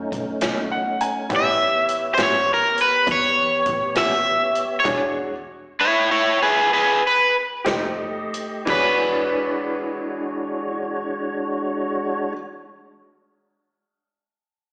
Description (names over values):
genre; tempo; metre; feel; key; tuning
slow blues; 58-68 BPM (dotted quarters); 12/8; straight; E mixolydian; A4 = 441 Hz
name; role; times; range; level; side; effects
overdriven semi-hollow guitar; melody; 0.0-12.3 s; E4 to E5; -20 LUFS; equal; analog delay
bright upright piano; accompaniment; 0.0-12.3 s; D4 to G#5; -31 LUFS; equal; slapback echo
tonewheel organ; sustained chords; 0.0-12.3 s; G#3 to Eb5; -30 LUFS; equal; chorus vibrato, slow rotary speaker
rich double bass; bass; 0.0-12.3 s; E1 to E2; -37 LUFS; equal; none
vintage drum kit; drums; 0.1-8.8 s; crash cymbal, hi-hat, kick drum, snare drum; -32 LUFS; equal; none
electric guitar through a small old amp; accompaniment; 0.4-12.4 s; A2 to C#5; -30 LUFS; equal; tremolo, slapback echo
room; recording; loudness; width
light reverb; live gig heard through the venue's PA, recital hall reverb, small speaker sound; -21 LUFS; mono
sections
0.0-8.7 A section; 8.7-12.8 B section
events
upright piano fill 0.4-1.3; slowing down 3.7-8.7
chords
0.0 B9; 1.3 A9; 4.9 E13; 7.7 F9; 8.7 E13